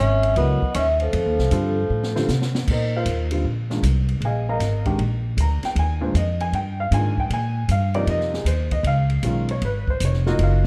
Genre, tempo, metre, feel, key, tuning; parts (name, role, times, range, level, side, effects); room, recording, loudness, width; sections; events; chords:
modal jazz; 156 BPM; 4/4; swing 66% on 8ths; Bb mixolydian; A4 = 435 Hz
vibraphone with soft mallets; melody; 0.0-2.3 s; A4 to E5; -26 LUFS; equal
warm tenor saxophone; second line; 0.0-2.3 s; E#3 to C#4; -30 LUFS; equal
upright bass; bass; 0.0-10.7 s; F1 to C3; -24 LUFS; equal
open jazz drum kit; drums; 0.2-10.7 s; crash cymbal, hi-hat, kick drum, ride cymbal, snare drum; -33 LUFS; equal
warm upright piano; accompaniment; 0.4-10.7 s; Bb2 to Bb5; -28 LUFS; equal
light reverb; dark, warm production; -22 LUFS; mono
0.0-2.7 A section; 2.7-10.7 B section
drum fill 1.9-2.7
0.0 F#9sus4; 1.1 F; 2.7 Bb9sus4; 8.8 Db9sus4